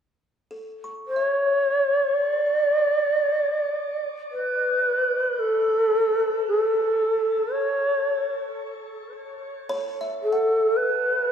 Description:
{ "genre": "ambient", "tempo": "56 BPM", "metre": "4/4", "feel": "straight", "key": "D major", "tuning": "A4 = 442 Hz", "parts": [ { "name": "buzzing kalimba", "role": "arpeggios", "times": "0.5-11.3 s", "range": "A4 to C#6", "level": "-34 LUFS", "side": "right 1 dB", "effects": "shimmer reverb, tape echo" }, { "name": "mellow long shakuhachi", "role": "melody", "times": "1.1-11.3 s", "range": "A4 to D5", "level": "-21 LUFS", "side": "equal", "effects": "shimmer reverb, tape echo" } ], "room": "wet concert hall reverb, RT60 2.0 s", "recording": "none", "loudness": "-20 LUFS", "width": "side -8 dB against mid", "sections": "0.0-11.3 A section", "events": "fade-in on kalimba 0.0-11.3", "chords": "0.0 Dmaj7(no3) (rootless)" }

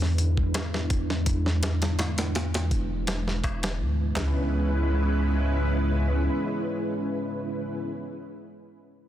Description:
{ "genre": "trip hop", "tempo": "83 BPM", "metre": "4/4", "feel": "swing 53% on 16ths", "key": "C# phrygian", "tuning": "A4 = 443 Hz", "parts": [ { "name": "string machine, cellos", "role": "sustained chords", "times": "0.0-7.8 s", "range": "G#3 to B4", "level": "-29 LUFS", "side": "equal", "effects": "ensemble chorus" }, { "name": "dark detuned saw bass", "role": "bass", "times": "0.0-6.3 s", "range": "E1 to E2", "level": "-26 LUFS", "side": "equal", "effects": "tube saturation" }, { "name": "dusty soul sampler-style drum kit", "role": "drums", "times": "0.0-4.3 s", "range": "handclaps, hi-hat, kick drum, snare drum, toms", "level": "-29 LUFS", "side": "equal", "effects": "small room ambience" }, { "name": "darbuka", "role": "percussion", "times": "0.5-3.6 s", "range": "none", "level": "-39 LUFS", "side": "left 2 dB", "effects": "none" } ], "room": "light reverb, digital ambience", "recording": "dense, heavily limited modern master", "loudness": "-24 LUFS", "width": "side -12 dB against mid", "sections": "0.0-4.2 A section; 4.2-7.0 B section", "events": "filter sweep on detuned saw bass 0.0-4.2; filter sweep on string machine 0.0-4.2", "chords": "0.0 E7; 4.2 C#m7" }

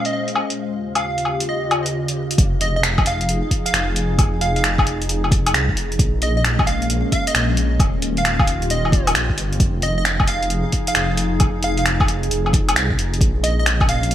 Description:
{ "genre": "future garage", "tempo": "133 BPM", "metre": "4/4", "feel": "swing 66% on 16ths", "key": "F minor", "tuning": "A4 = 442 Hz", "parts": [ { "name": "plucky unison lead", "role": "melody", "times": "0.0-14.1 s", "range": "Eb5 to F5", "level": "-25 LUFS", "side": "right 1 dB", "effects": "digital delay" }, { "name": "warbly tape-like pad", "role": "sustained chords", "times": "0.0-14.1 s", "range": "Eb2 to C5", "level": "-26 LUFS", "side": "equal", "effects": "chorus, built-in reverb, phaser, vintage 12-bit sampler grit, sidechain pumping" }, { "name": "deep house drum kit", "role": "drums", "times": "0.0-14.1 s", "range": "finger snaps, hi-hat, woodblock", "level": "-21 LUFS", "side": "left 1 dB", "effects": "gated reverb" }, { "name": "flickering grainy texture", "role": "texture", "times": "0.1-2.4 s", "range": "F5", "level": "-42 LUFS", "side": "equal", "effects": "none" }, { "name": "dark detuned saw bass", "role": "bass", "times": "2.4-14.1 s", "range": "Eb1 to C2", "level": "-22 LUFS", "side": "equal", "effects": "tube saturation, sidechain pumping" }, { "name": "electronic kick drum", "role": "drums", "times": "2.4-13.9 s", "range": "none", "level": "-18 LUFS", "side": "equal", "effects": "none" } ], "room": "light reverb", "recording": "bright 1980s-style digital production, vinyl crackle, low-pass filter", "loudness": "-16 LUFS", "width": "side -11 dB against mid", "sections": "0.0-2.4 A section; 2.4-14.1 B section", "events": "filter sweep on drum 0.0-2.4", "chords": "0.0 Bbm9; 0.6 Eb9; 2.4 Fm7; 6.0 Bbm7; 7.8 Eb9; 9.6 Fm7; 13.2 Bbm7" }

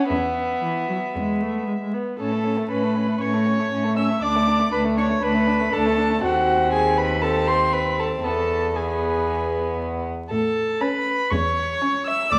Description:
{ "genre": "quick classical-period movement for string quartet", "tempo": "119 BPM", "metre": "4/4", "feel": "straight", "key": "A major", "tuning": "A4 = 442 Hz", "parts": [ { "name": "dark violin", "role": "melody", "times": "0.0-12.4 s", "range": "E5 to E6", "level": "-28 LUFS", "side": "equal", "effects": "none" }, { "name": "dark violin", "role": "second line", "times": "0.0-12.2 s", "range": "A3 to D4", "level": "-28 LUFS", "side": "equal", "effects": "none" }, { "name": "rich cello", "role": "bass", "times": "0.1-12.4 s", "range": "D2 to A2", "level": "-27 LUFS", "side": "equal", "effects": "none" }, { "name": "rich viola", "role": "accompaniment", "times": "0.6-12.4 s", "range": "E3 to E5", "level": "-28 LUFS", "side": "equal", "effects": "none" } ], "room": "wet recital hall reverb, RT60 1.4 s", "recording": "vinyl crackle", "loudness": "-22 LUFS", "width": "mono", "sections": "0.0-2.2 A section; 2.2-12.4 B section", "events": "none", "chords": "0.1 E5; 1.2 E; 2.2 A; 4.2 D5; 6.2 B13b9/D#; 8.2 E; 10.3 A" }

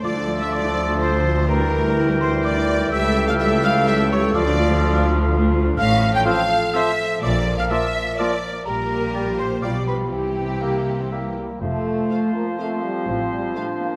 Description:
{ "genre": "cinematic, playful, whimsical film cue", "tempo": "125 BPM", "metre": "3/4", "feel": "straight", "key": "D minor, F major from 5.8 s", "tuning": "A4 = 439 Hz", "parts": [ { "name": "rich studio violin section", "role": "melody", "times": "0.0-13.6 s", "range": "G4 to G5", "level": "-31 LUFS", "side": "equal", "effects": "none" }, { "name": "worn celesta", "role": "melody", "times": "0.0-11.3 s", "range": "G5 to G6", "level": "-32 LUFS", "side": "equal", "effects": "none" }, { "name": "clear clarinet", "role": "second line", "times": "0.0-14.0 s", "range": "C4 to Bb4", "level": "-32 LUFS", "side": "equal", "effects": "none" }, { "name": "clear oboe", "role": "second line", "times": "0.0-14.0 s", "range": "C5 to A5", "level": "-33 LUFS", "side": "equal", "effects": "none" }, { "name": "rich studio violin section", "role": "second line", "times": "0.0-13.6 s", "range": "G4 to G5", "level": "-34 LUFS", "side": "equal", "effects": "none" }, { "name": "silver concert flute", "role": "second line", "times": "0.0-14.0 s", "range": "G4 to G5", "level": "-29 LUFS", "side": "equal", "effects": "none" }, { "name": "rich studio viola section", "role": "accompaniment", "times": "0.0-13.6 s", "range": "E3 to A4", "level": "-30 LUFS", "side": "equal", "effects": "none" }, { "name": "warm bassoon", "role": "accompaniment", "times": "0.0-14.0 s", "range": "E3 to C4", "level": "-30 LUFS", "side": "equal", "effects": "none" }, { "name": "mellow French horn section", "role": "sustained chords", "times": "0.0-13.9 s", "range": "E3 to Bb4", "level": "-29 LUFS", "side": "equal", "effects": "none" }, { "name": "rich studio cello section", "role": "bass", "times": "0.0-13.4 s", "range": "C#2 to C3", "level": "-30 LUFS", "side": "equal", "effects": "none" }, { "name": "warm studio double bass section", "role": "bass", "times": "0.0-13.5 s", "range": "F1 to D2", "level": "-27 LUFS", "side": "equal", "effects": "none" } ], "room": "wet concert hall reverb, RT60 1.9 s", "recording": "none", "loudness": "-20 LUFS", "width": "mono", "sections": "0.0-11.6 A section; 11.6-14.0 B section", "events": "none", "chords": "0.0 Dm; 1.5 Em7b5/D; 2.9 A7/C#; 4.4 Dm; 5.8 F/A; 7.2 Bb; 8.7 Gm/Bb; 9.6 G7/B; 10.1 C; 11.6 F; 13.1 F/A" }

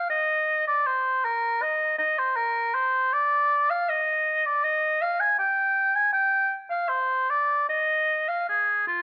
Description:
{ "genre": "classical, baroque-style fantasia for unaccompanied oboe", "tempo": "79 BPM", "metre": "3/4", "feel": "rubato", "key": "Eb major", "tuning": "A4 = 438 Hz", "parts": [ { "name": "clear oboe", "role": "solo", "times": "0.0-9.0 s", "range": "F4 to Ab5", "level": "-24 LUFS", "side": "equal", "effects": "none" } ], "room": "moderate stone room reverb, RT60 1.3 s", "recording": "dark, warm production", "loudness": "-24 LUFS", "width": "mono", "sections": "0.0-9.0 A section", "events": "none", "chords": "none" }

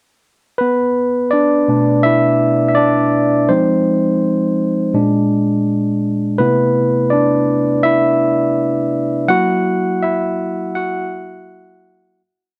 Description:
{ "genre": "soul", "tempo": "83 BPM", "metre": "4/4", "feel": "straight", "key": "B phrygian", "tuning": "A4 = 440 Hz", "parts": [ { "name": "barky tine electric piano", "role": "solo", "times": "0.6-12.2 s", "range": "A#2 to F#5", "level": "-16 LUFS", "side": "equal", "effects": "none" } ], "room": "light reverb, digital ambience", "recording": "dark, warm production", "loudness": "-16 LUFS", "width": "mono", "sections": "0.6-12.2 verse", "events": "tine electric piano solo 0.6-12.2; fade-out 9.3-12.2", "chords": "0.6 Bm7; 3.5 Fm7; 5.0 A#7; 6.4 C69; 9.3 F#7" }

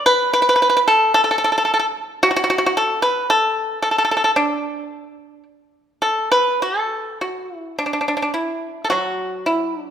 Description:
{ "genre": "chinese traditional, Chinese solo plucked strings", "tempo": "50-56 BPM", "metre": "2/4", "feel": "rubato", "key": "unclear", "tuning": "A4 = 440 Hz", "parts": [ { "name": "pipa", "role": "solo", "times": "0.0-9.9 s", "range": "F#3 to B4", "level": "-16 LUFS", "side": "equal", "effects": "none" } ], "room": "moderate recital hall reverb, RT60 1.7 s", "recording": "recorded in a church or concert hall", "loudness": "-16 LUFS", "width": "side -9 dB against mid", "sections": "0.0-6.6 A section; 6.6-9.9 B section", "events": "none", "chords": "none" }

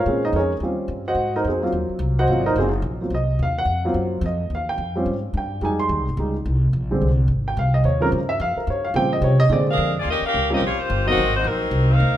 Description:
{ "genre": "jazz, big band swing", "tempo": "216 BPM", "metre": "4/4", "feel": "swing 60% on 8ths", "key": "unclear", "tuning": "A4 = 439 Hz", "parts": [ { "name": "warm baby grand piano", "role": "accompaniment", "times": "0.0-11.2 s", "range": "Db3 to C6", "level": "-22 LUFS", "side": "right 1 dB", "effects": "none" }, { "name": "upright bass", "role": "bass", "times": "0.0-12.2 s", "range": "Gb1 to C3", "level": "-22 LUFS", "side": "equal", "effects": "none" }, { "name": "clear saxophone section", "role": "melody", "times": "9.7-12.2 s", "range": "Gb3 to F5", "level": "-20 LUFS", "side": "left 1 dB", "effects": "none" } ], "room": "wet large studio reverb, RT60 1.4 s", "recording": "minimal, uncompressed stereo recording", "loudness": "-19 LUFS", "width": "side -12 dB against mid", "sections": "0.0-10.1 A section; 10.1-12.2 B section", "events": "grand piano solo 0.0-10.1", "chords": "0.1 Bbm7; 0.6 Eb13; 1.2 Ab13; 4.5 Eb13; 5.6 Fm7; 6.7 Bb13; 7.8 Eb13; 9.5 Bb7; 10.1 Eb13; 11.2 Ab13" }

